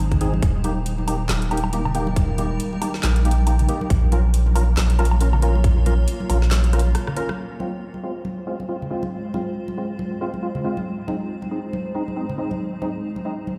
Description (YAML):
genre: deep dubstep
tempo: 138 BPM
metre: 4/4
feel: swing 58% on 16ths, half-time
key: F minor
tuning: A4 = 439 Hz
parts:
  - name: granular cloud pad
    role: sustained chords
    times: 0.0-13.6 s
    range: G3 to Db5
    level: -34 LUFS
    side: equal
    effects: built-in reverb
  - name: soft dub sub bass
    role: bass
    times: 0.0-6.9 s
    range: Eb1 to Bb1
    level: -21 LUFS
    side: equal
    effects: none
  - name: electronic kick drum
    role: drums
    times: 0.1-5.7 s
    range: none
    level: -21 LUFS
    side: equal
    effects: none
  - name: garage drum kit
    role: drums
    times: 0.1-7.4 s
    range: handclaps, hi-hat, rim click, snare drum, woodblock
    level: -31 LUFS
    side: equal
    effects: none
  - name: congas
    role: percussion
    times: 0.1-13.6 s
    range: none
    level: -32 LUFS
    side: equal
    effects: dub echo
  - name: percussive organ stab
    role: stabs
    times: 0.2-13.3 s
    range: Ab3 to Bb4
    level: -31 LUFS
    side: equal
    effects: ensemble chorus, cassette tape, dub echo
room: light reverb, digital ambience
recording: played on a big sound system in a bare room, large studio reverb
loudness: -22 LUFS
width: mono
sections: 0.0-7.4 A section; 7.4-13.6 B section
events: drop 0.0-7.4; drum fill 6.7-7.4; break 6.9-7.4; filter sweep on synth stab 7.4-13.6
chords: 0.4 Eb; 3.9 Bbm; 7.4 Fm; 10.9 Ab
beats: | 0.42 0.86 1.29 1.73 | 2.16 2.60 3.03 3.47 | 3.90 4.34 4.77 5.21 | 5.64 6.08 6.51 6.95 | 7.38 7.82 8.25 8.69 | 9.12 9.55 9.99 10.43 | 10.86 11.29 11.73 12.16 | 12.60 13.03 13.47